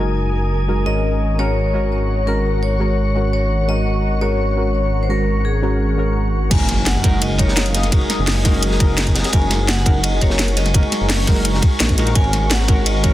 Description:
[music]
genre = liquid drum and bass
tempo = 170 BPM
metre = 4/4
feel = straight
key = Gb major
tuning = A4 = 440 Hz
[part]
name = deep mellow chord stab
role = accompaniment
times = 0.0-13.1 s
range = Ab3 to Bb4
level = -23 LUFS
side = right 1 dB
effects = chorus
[part]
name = glassy FM pad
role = sustained chords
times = 0.0-13.1 s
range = Bb4 to Eb6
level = -28 LUFS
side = left 2 dB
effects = ensemble chorus, built-in reverb, sidechain pumping
[part]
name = dark detuned saw bass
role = bass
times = 0.0-13.1 s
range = Gb1 to Bb1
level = -19 LUFS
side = equal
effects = none
[part]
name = vibraphone with medium hard mallets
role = melody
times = 0.9-13.1 s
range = Ab4 to Ab5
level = -25 LUFS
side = left 2 dB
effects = digital delay
[part]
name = crunchy breakbeat drum kit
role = drums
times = 6.5-13.1 s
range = hi-hat, ride cymbal, snare drum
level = -26 LUFS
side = equal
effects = high-pass filter on cymbals, high-pass filter on hats, high-pass filter on snare, high-pass filter on room
[part]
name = electronic kick drum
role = drums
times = 6.5-13.1 s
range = none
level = -16 LUFS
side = equal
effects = none
[part]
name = garage drum kit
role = drums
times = 6.5-13.1 s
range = crash cymbal, hi-hat, snare drum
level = -21 LUFS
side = equal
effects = low-pass filter on hats, low-pass filter on cymbals, low-pass filter on snare, low-pass filter on room
[part]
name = impact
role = sound effects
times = 6.5-7.9 s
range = none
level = -25 LUFS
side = equal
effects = none
[sound]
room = little or no reverb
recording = dense, heavily limited modern master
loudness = -15 LUFS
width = side -14 dB against mid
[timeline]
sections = 0.0-6.5 A section; 6.5-13.1 B section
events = drop 6.5-13.1; impact 6.5-7.9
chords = 0.0 Gb69; 0.9 Ab9sus4; 6.5 Gb69; 12.2 Ab9sus4

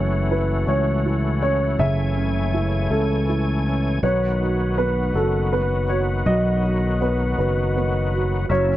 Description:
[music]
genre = six-eight pop ballad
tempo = 54 BPM (dotted quarters)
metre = 6/8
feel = straight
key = unclear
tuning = A4 = 438 Hz
[part]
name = dark baby grand piano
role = melody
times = 0.0-8.8 s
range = A4 to E5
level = -25 LUFS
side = equal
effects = none
[part]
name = warm upright piano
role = accompaniment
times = 0.0-8.8 s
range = C#3 to F#4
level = -27 LUFS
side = right 6 dB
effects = none
[part]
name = overdriven tonewheel organ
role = sustained chords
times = 0.0-8.8 s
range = C#3 to G#5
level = -27 LUFS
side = left 2 dB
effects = chorus vibrato, lush chorus
[part]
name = fingered electric bass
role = bass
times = 0.0-8.8 s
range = F#1 to C#2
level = -22 LUFS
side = left 1 dB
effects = none
[sound]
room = light reverb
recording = dry, close 1970s-style studio recording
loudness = -19 LUFS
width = side -14 dB against mid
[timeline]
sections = 0.0-8.5 A section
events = none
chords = 0.0 F#m7; 4.0 B

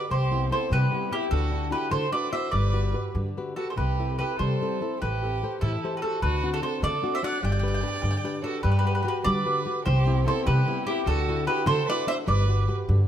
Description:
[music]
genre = italian folk, Italian serenade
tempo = 99 BPM (dotted quarters)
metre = 6/8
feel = rubato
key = G major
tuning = A4 = 440 Hz
[part]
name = mandolin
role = melody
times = 0.0-12.7 s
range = G4 to G5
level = -28 LUFS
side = right 1 dB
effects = none
[part]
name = rich violin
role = second line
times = 0.0-12.7 s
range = E4 to D5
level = -33 LUFS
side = right 6 dB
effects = none
[part]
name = flamenco guitar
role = accompaniment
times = 0.0-13.1 s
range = C3 to F#5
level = -32 LUFS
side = left 4 dB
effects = none
[part]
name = upright bass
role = bass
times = 0.1-13.0 s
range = G1 to G3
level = -25 LUFS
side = equal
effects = none
[sound]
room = light reverb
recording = close, detailed microphones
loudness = -23 LUFS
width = side -10 dB against mid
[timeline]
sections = 0.0-8.6 A section; 8.6-13.1 A section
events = none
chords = 0.1 Cmaj7; 1.3 Dadd9; 2.5 Gmaj7; 3.8 C6; 5.0 Am7; 6.2 D7; 7.4 G; 8.6 Gmaj7; 9.9 Cmaj7; 11.1 Dadd9; 12.3 Gmaj7

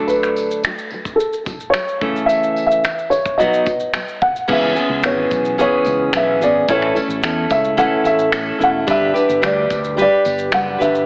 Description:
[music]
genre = acoustic pop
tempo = 109 BPM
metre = 4/4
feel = straight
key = unclear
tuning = A4 = 440 Hz
[part]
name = fingerpicked steel-string acoustic guitar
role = accompaniment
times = 0.0-11.1 s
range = A2 to B4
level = -18 LUFS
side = equal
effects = none
[part]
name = dark upright piano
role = melody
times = 0.1-11.1 s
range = A4 to F#5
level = -17 LUFS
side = equal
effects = none
[part]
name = natural country drum kit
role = drums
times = 0.1-11.1 s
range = crash cymbal, finger snaps, kick drum, shaker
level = -24 LUFS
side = equal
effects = none
[part]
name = tambourine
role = percussion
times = 0.1-10.9 s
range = none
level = -39 LUFS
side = equal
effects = none
[part]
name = fretless electric bass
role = bass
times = 4.5-11.0 s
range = E1 to E2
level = -28 LUFS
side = equal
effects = wide subtle chorus
[sound]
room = moderate plate reverb, RT60 1.9 s, studio reverb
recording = heavily compressed radio sound, AM radio sound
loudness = -14 LUFS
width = side -31 dB against mid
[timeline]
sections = 0.0-4.5 A section; 4.5-11.1 B section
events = none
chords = 0.0 D; 2.0 A/C#; 3.4 B; 4.5 C#m7; 6.7 A; 8.9 G

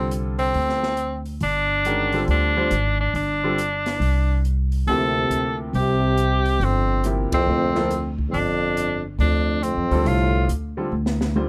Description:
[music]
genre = modal jazz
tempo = 139 BPM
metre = 4/4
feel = swing 65% on 8ths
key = G dorian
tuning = A4 = 440 Hz
[part]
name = bright tenor saxophone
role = melody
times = 0.0-10.5 s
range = C4 to A4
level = -25 LUFS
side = equal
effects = none
[part]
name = bright upright piano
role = accompaniment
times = 0.0-11.5 s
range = C3 to C5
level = -29 LUFS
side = equal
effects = none
[part]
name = upright bass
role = bass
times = 0.0-11.5 s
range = G1 to F2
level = -26 LUFS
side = equal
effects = none
[part]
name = open jazz drum kit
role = drums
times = 0.1-11.5 s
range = hi-hat, kick drum, ride cymbal, snare drum, toms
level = -33 LUFS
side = equal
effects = none
[part]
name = growling trombone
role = second line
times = 4.9-10.5 s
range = E2 to C3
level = -27 LUFS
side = equal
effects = none
[sound]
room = little or no reverb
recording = close, detailed microphones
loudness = -22 LUFS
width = mono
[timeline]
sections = 0.0-11.5 A section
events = band accent 7.3; drum fill 10.9-11.5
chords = 0.0 G9sus4

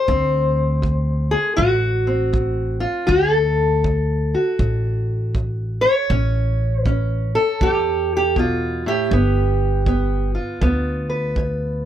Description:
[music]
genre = acoustic country blues, solo or duo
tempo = 80 BPM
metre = 4/4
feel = swing 64% on 8ths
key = D mixolydian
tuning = A4 = 441 Hz
[part]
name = fingerpicked steel-string acoustic guitar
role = melody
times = 0.0-11.9 s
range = D2 to C#5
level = -20 LUFS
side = equal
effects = none
[part]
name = upright bass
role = bass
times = 0.1-11.9 s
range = G1 to E2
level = -21 LUFS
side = equal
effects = none
[part]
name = kick drum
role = drums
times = 0.1-11.6 s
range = none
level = -24 LUFS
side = right 1 dB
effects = none
[sound]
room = little or no reverb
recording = none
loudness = -17 LUFS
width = side -10 dB against mid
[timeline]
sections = 0.0-11.9 A section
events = none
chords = 0.0 D7; 6.1 A; 9.1 G7

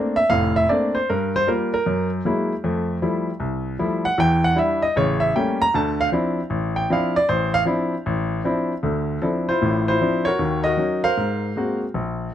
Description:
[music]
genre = solo jazz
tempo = 155 BPM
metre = 4/4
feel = swing 66% on 8ths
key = D minor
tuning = A4 = 440 Hz
[part]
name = clear baby grand piano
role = solo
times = 0.0-12.3 s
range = F1 to Bb5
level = -19 LUFS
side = equal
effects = none
[sound]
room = light reverb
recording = dark, warm production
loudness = -19 LUFS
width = side -10 dB against mid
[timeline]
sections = 0.0-8.8 A section; 8.8-12.3 B section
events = grand piano solo 0.0-8.8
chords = 0.0 Bbmaj9; 1.1 Gm7; 1.9 F#9; 2.6 Fmaj9; 4.2 Em9; 5.0 A7b9; 5.7 Dm9; 10.4 Ebm7; 11.2 G#9

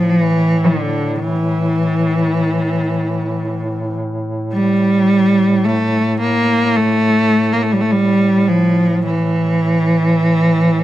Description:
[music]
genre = caucasian folk, Caucasian lament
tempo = 54 BPM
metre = 4/4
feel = rubato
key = unclear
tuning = A4 = 440 Hz
[part]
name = warm cello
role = melody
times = 0.0-10.8 s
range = D3 to Bb3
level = -14 LUFS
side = equal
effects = none
[part]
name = mellow duduk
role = drone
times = 0.0-10.8 s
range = A2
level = -21 LUFS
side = equal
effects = none
[sound]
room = light reverb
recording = close, detailed microphones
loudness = -13 LUFS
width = side -14 dB against mid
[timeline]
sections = 0.0-10.8 A section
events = none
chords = none

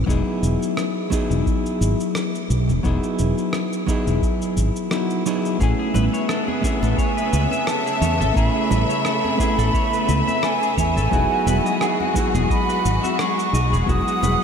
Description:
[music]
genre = sunset chillout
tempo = 87 BPM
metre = 4/4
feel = swing 55% on 16ths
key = A lydian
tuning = A4 = 438 Hz
[part]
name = hollow-body jazz guitar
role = accompaniment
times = 0.0-14.4 s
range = F#3 to G#5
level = -23 LUFS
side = left 1 dB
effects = auto-pan, ping-pong delay
[part]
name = fretless electric bass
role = bass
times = 0.0-14.3 s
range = E1 to E2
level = -20 LUFS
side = equal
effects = ensemble chorus
[part]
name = electronic kick drum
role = drums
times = 0.1-14.0 s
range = none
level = -24 LUFS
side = equal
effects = overdrive, studio reverb
[part]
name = electronic shaker and rim click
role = drums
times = 0.1-14.4 s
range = none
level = -31 LUFS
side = equal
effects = overdrive, studio reverb
[part]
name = rich symphonic string section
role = sustained chords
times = 5.6-14.4 s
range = C#3 to F#5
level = -25 LUFS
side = left 2 dB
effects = none
[part]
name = clean electric guitar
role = arpeggios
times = 5.6-14.3 s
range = F#4 to E5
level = -29 LUFS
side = left 1 dB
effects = spring reverb, ping-pong delay
[part]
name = congas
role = percussion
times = 5.9-14.4 s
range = none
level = -32 LUFS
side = right 4 dB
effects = none
[part]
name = breathy mellow silver concert flute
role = melody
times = 7.0-14.4 s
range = G#5 to D#6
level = -24 LUFS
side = right 2 dB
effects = ping-pong delay
[sound]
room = wet huge ambient reverb, RT60 7.7 s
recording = dreamy mix soaked in reverb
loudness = -18 LUFS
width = side -7 dB against mid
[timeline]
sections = 0.0-14.4 A section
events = none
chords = 0.1 Emaj9; 5.6 Amaj9; 11.1 Emaj9

